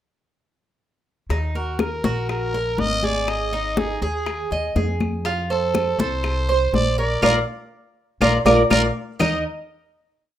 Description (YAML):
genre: latin, Cuban son and guajira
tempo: 122 BPM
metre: 4/4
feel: straight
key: Eb harmonic minor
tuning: A4 = 440 Hz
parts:
  - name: Cuban tres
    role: arpeggios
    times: 1.3-9.4 s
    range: Eb4 to Eb5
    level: -22 LUFS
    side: right 2 dB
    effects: plate reverb
  - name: upright bass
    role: bass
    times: 1.3-9.4 s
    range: Ab1 to F2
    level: -25 LUFS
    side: equal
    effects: none
  - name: bongos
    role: percussion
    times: 1.3-9.3 s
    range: none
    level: -30 LUFS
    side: left 8 dB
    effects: none
  - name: congas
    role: percussion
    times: 1.3-9.3 s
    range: none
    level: -25 LUFS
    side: left 3 dB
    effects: none
  - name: growling trumpet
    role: melody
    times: 1.6-9.4 s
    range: Gb4 to Eb5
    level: -26 LUFS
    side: equal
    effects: plate reverb
  - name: claves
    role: percussion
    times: 1.8-9.3 s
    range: none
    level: -31 LUFS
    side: left 5 dB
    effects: none
room: wet small room reverb, RT60 0.5 s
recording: rough home demo mix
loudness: -19 LUFS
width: side -11 dB against mid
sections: 1.3-9.2 verse; 9.2-10.4 final chord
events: band accent 7.2-9.2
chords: 1.3 Ebm; 3.3 Ab5; 5.3 F; 7.2 Bb; 9.2 Eb5